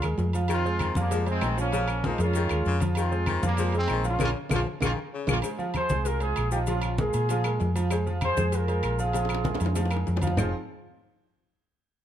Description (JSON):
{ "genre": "latin, salsa", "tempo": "194 BPM", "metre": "4/4", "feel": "straight", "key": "F minor", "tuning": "A4 = 445 Hz", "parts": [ { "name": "mellow trumpet section", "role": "melody", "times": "0.0-5.4 s", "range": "G3 to F4", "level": "-31 LUFS", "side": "right 1 dB", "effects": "none" }, { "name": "warm concert grand piano", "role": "accompaniment", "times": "0.0-10.5 s", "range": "F3 to F5", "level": "-31 LUFS", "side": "right 2 dB", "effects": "none" }, { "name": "hollow-body short-scale fingered electric bass", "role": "bass", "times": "0.0-10.5 s", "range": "F1 to Bb2", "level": "-27 LUFS", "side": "equal", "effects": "none" }, { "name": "agogo bells and timbales", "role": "percussion", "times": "0.0-10.4 s", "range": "none", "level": "-38 LUFS", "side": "right 6 dB", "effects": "none" }, { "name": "claves", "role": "percussion", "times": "0.0-10.5 s", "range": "none", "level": "-38 LUFS", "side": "left 4 dB", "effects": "none" }, { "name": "congas", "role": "percussion", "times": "0.0-10.4 s", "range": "none", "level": "-33 LUFS", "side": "left 2 dB", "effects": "none" }, { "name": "cowbell and bongos", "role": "percussion", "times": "0.0-10.5 s", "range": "none", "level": "-38 LUFS", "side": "left 9 dB", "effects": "none" }, { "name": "maracas", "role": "percussion", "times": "0.0-10.5 s", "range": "none", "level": "-44 LUFS", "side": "left 7 dB", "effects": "none" }, { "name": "breathy baritone saxophone", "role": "second line", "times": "0.5-5.3 s", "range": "Db3 to F3", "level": "-34 LUFS", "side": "left 6 dB", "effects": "none" }, { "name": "clear trombone section", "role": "melody", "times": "5.8-10.5 s", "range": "Db4 to C5", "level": "-30 LUFS", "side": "right 1 dB", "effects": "none" } ], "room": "light reverb", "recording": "dark, warm production", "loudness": "-24 LUFS", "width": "side -10 dB against mid", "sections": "0.0-5.4 A section; 5.4-10.4 B section; 10.4-11.6 C section", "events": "band accent 4.2-5.4; drum fill 5.0-5.4, 9.1-10.4", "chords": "0.5 Fm7; 1.7 Bbm7; 3.0 Fm7; 4.2 Bbm7; 5.4 Fm; 6.7 Bbm7; 7.9 Fm; 9.1 Bb5; 10.4 Fm7", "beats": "0.19 | 0.50 0.81 1.12 1.43 | 1.73 2.04 2.35 2.66 | 2.97 3.28 3.59 3.90 | 4.21 4.51 4.82 5.13 | 5.44 5.75 6.06 6.37 | 6.68 6.99 7.29 7.60 | 7.91 8.22 8.53 8.84 | 9.15 9.46 9.77 10.08 | 10.38" }